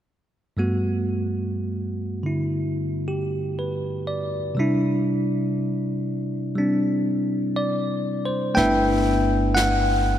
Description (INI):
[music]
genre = jazz ballad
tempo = 60 BPM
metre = 4/4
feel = swing 68% on 8ths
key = G major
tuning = A4 = 438 Hz
[part]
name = bell-like tine electric piano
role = accompaniment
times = 0.6-10.2 s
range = G2 to G5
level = -22 LUFS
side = equal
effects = none
[part]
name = upright bass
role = bass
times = 8.6-10.2 s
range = G1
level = -24 LUFS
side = equal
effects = none
[part]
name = jazz brush drum kit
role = drums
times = 8.6-10.2 s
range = brushed snare drum, hi-hat, snare drum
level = -29 LUFS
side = right 1 dB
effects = none
[sound]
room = moderate lush hall reverb, RT60 2.8 s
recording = dreamy mix soaked in reverb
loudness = -21 LUFS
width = side -10 dB against mid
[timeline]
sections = 0.6-8.6 A section; 8.6-10.2 B section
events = none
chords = 0.6 Gmaj7; 4.6 C; 8.6 G6